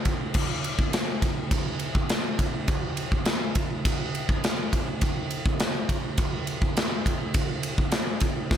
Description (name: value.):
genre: metal.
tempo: 103 BPM.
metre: 4/4.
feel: straight.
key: none.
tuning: none.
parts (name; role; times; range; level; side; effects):
big rock drum kit; drums; 0.1-8.6 s; crash cymbal, kick drum, ride cymbal, snare drum; -24 LUFS; equal; none.
room: light reverb.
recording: none.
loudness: -24 LUFS.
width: side -9 dB against mid.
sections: 0.0-8.6 A section.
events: none.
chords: none.